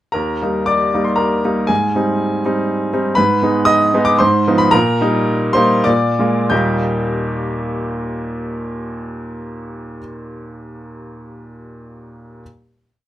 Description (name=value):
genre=classical, romantic character piece for solo piano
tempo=87-123 BPM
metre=3/4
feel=rubato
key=Eb major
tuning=A4 = 441 Hz
part: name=clear baby grand piano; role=solo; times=0.1-12.4 s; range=Eb2 to G6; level=-15 LUFS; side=equal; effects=none
room=light reverb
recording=none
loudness=-14 LUFS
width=side -13 dB against mid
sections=0.2-6.5 A section; 6.5-10.2 final chord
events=slowing down 2.4-6.5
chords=0.2 Eb; 1.7 Abmaj7; 3.2 Abm; 4.2 Fm7b5/Ab; 4.7 Eb/Bb; 5.9 Bb7; 6.5 Eb